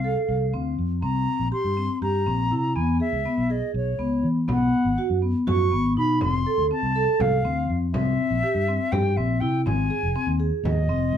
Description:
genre	contemporary instrumental, chamber music in an uneven meter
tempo	244 BPM (eighths)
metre	7/8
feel	straight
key	unclear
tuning	A4 = 440 Hz
part	silver concert flute	melody	0.0-11.2 s	Db5 to Db6	-28 LUFS	equal	none
part	vibraphone with medium mallets	arpeggios	0.0-11.2 s	B3 to A4	-24 LUFS	left 1 dB	none
part	fingered electric bass	bass	0.0-11.2 s	F1 to E3	-25 LUFS	equal	none
part	frame drum	percussion	4.5-10.9 s	none	-32 LUFS	equal	none
room	moderate studio ambience, RT60 0.5 s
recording	minimal, uncompressed stereo recording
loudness	-21 LUFS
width	side -9 dB against mid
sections	0.0-11.2 A section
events	none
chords	0.0 F; 1.0 C5; 2.8 E; 4.5 B5; 6.2 F; 7.9 C; 9.7 Ab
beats	0.04 0.29 0.54 0.79 | 1.03 1.28 1.53 1.77 2.02 2.27 2.51 | 2.76 3.01 3.25 3.50 3.75 3.99 4.24 | 4.49 4.73 4.98 5.23 5.47 5.72 5.96 | 6.21 6.46 6.70 6.95 7.20 7.44 7.69 | 7.93 8.18 8.43 8.67 8.92 9.17 9.41 | 9.66 9.90 10.15 10.40 10.64 10.89 11.13

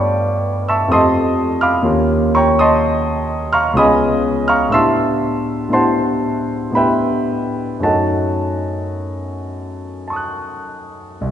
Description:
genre	classical, impressionist solo piano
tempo	50-65 BPM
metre	3/4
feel	rubato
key	unclear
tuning	A4 = 440 Hz
part	warm grand piano	solo	0.0-11.3 s	C2 to F#6	-14 LUFS	equal	none
room	wet concert hall reverb, RT60 2.0 s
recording	heard from further back in the room, nothing above 10.8 kHz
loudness	-14 LUFS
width	side -10 dB against mid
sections	0.0-11.2 A section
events	none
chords	0.0 G9; 0.9 F9; 1.9 D#9; 3.8 C#9; 4.7 Am11; 7.9 F#m6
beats	0.00 0.93 | 1.87 2.84 3.78 | 4.75 5.75 6.77 | 7.86 8.99 10.09 | 11.22

